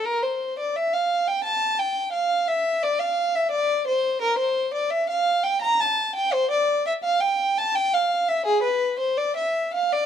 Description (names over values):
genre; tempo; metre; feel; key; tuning
classical, baroque-style suite movement for unaccompanied violin; 85 BPM; 3/4; rubato; D minor, F major from 4.2 s; A4 = 440 Hz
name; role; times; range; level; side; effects
rich violin; solo; 0.0-10.1 s; Ab4 to Bb5; -21 LUFS; equal; none
room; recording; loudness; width
moderate stone room reverb, RT60 1.2 s; dark, warm production; -21 LUFS; side -8 dB against mid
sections
0.0-10.1 A section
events
none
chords
none